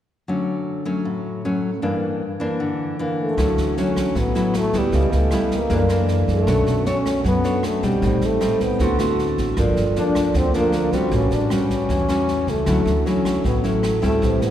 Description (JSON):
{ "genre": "bossa nova", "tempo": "155 BPM", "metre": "4/4", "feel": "straight", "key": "D major", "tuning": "A4 = 441 Hz", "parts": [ { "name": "nylon-string guitar", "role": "accompaniment", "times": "0.3-14.5 s", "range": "F#2 to C#5", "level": "-22 LUFS", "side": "left 1 dB", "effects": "none" }, { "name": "mellow trombone", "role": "melody", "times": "3.2-14.5 s", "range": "G3 to D4", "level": "-23 LUFS", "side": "left 1 dB", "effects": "none" }, { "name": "vibraphone with medium mallets", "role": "accompaniment", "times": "3.3-14.5 s", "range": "C#4 to C6", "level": "-26 LUFS", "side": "right 5 dB", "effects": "none" }, { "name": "upright bass", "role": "bass", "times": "3.4-14.5 s", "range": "G1 to F#2", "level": "-24 LUFS", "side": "equal", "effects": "none" }, { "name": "open jazz drum kit", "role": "drums", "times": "3.4-14.5 s", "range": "kick drum, rim click, snare drum", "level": "-27 LUFS", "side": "right 1 dB", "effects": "none" } ], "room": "wet church reverb, RT60 3.0 s", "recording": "recorded in a church or concert hall", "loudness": "-18 LUFS", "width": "side -11 dB against mid", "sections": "0.3-3.4 A section; 3.4-14.5 B section", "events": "none", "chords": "0.3 Dmaj7; 1.8 Gm6; 3.4 Dmaj9; 4.9 C#m7b5; 5.7 F#7alt; 6.5 Bm9; 8.0 Am7b5; 8.8 D7; 9.6 Gm7; 11.1 A13; 12.7 Dmaj9" }